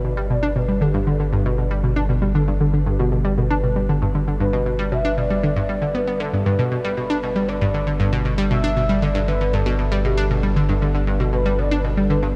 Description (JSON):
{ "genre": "ambient, sequencer-driven space music", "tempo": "117 BPM", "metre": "4/4", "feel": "straight", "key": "unclear", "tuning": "A4 = 440 Hz", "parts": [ { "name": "expressive synth lead", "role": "melody", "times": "0.0-12.4 s", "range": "G4 to E5", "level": "-29 LUFS", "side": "equal", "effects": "subtle chorus, shimmer reverb, delay" }, { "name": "sweeping resonant pad", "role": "sustained chords", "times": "0.0-12.4 s", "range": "G3 to B4", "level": "-34 LUFS", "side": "equal", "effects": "chorus" }, { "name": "analog pluck", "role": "riff", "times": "0.0-12.3 s", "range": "G2 to D4", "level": "-23 LUFS", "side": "equal", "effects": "chorus, delay" }, { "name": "round analog bass", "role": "bass", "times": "0.0-12.4 s", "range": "G1", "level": "-26 LUFS", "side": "equal", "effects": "none" } ], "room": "moderate huge ambient reverb, RT60 8.2 s", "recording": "cassette tape", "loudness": "-20 LUFS", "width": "mono", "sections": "0.0-12.4 A section", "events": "fade-in on analog synth pad 0.0-12.4", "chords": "0.0 G" }